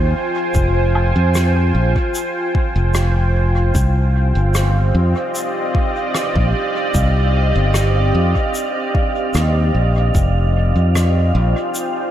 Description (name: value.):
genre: ambient dub.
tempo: 75 BPM.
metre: 4/4.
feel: straight.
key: F dorian.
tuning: A4 = 441 Hz.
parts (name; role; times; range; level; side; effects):
deep dark ambient pad; sustained chords; 0.0-12.1 s; C4 to Ab5; -20 LUFS; right 1 dB; chorus, built-in reverb.
fingered electric bass; bass; 0.0-11.5 s; F1 to F2; -15 LUFS; equal; none.
electronic kick drum; drums; 0.5-10.3 s; none; -19 LUFS; equal; overdrive.
shaker, woodblock and rim click; drums; 0.5-11.9 s; none; -27 LUFS; equal; dub echo.
wind-like tuned noise texture; texture; 4.2-12.1 s; F5; -28 LUFS; right 4 dB; built-in reverb.
room: light reverb, studio ambience.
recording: none.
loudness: -14 LUFS.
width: side -11 dB against mid.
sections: 0.0-12.1 A section.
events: none.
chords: 0.0 Fm; 3.7 Cm; 10.1 Fm7.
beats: | 0.55 1.35 2.15 2.95 | 3.75 4.55 5.35 6.15 | 6.95 7.75 8.55 9.35 | 10.15 10.95 11.75.